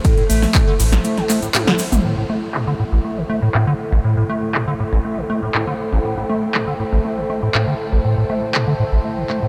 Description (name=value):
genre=acid house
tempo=120 BPM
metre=4/4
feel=straight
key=A minor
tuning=A4 = 440 Hz
part: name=dark analog pad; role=sustained chords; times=0.0-9.5 s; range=A4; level=-30 LUFS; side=equal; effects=chorus, sidechain pumping
part: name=liquid acid bass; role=riff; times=0.0-9.5 s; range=A1 to A3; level=-21 LUFS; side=equal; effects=phaser, overdrive, subtle chorus, vintage 12-bit sampler grit, sidechain pumping, tape echo
part: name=electro analog drum machine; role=drums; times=0.0-9.4 s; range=handclaps, hi-hat, ride cymbal, snare drum, toms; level=-25 LUFS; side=equal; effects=low-pass filter on hats, low-pass filter on cymbals, low-pass filter on snare, low-pass filter on toms, low-pass filter on room
part: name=electronic kick drum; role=drums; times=0.0-0.6 s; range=none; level=-18 LUFS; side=equal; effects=none
part: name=cabasa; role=percussion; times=0.0-2.0 s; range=none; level=-31 LUFS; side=equal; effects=none
part: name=warbly tape-like pad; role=texture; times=0.0-9.5 s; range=E4 to G5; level=-30 LUFS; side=equal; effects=chorus, built-in reverb, sidechain pumping
part: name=warm sub bass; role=bass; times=0.3-1.0 s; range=A1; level=-19 LUFS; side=equal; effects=tube saturation, sidechain pumping
room=moderate huge ambient reverb, RT60 8.4 s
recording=dreamy mix soaked in reverb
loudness=-18 LUFS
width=mono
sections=0.0-2.0 A section; 2.0-9.5 B section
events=drop 0.0-2.0; kick drops out 1.0-2.0; drum fill 1.5-2.0; filter sweep on drum 2.0-9.5; filter sweep on acid bass 2.0-9.5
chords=0.0 Am7